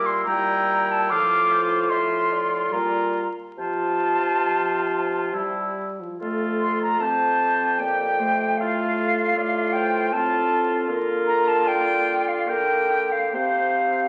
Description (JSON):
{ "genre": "classical, slow romantic movement for wind quintet", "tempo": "67-80 BPM", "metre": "3/4", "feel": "rubato", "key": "F major", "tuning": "A4 = 439 Hz", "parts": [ { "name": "mellow hollow concert flute", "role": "melody", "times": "0.0-14.1 s", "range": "F5 to D6", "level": "-25 LUFS", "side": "equal", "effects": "none" }, { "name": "warm oboe", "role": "second line", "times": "0.0-14.1 s", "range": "E4 to G4", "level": "-29 LUFS", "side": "equal", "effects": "none" }, { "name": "warm French horn", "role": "accompaniment", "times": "0.0-14.1 s", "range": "F3 to C4", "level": "-34 LUFS", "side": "equal", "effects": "none" }, { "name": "warm clarinet", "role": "accompaniment", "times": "0.0-14.1 s", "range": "A4 to G5", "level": "-31 LUFS", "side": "equal", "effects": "none" }, { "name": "dark bassoon", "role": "bass", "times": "0.0-14.1 s", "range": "F2 to D3", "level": "-31 LUFS", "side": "equal", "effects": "none" } ], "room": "wet recital hall reverb, RT60 1.4 s", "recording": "very old 78 rpm record, vinyl crackle", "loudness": "-22 LUFS", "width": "mono", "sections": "0.0-6.2 A section; 6.2-14.1 B section", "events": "none", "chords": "0.0 C7/Bb (rootless); 1.1 F/A; 2.7 Gm7/Bb; 3.6 F/C; 5.3 C; 6.2 F; 8.6 F/A; 10.9 Bb/D; 13.3 C5", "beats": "0.28 | 1.12 1.91 2.73 | 3.58 4.46 5.33 | 6.20 7.00 7.79 | 8.59 9.36 10.12 | 10.87 11.65 12.46 | 13.33" }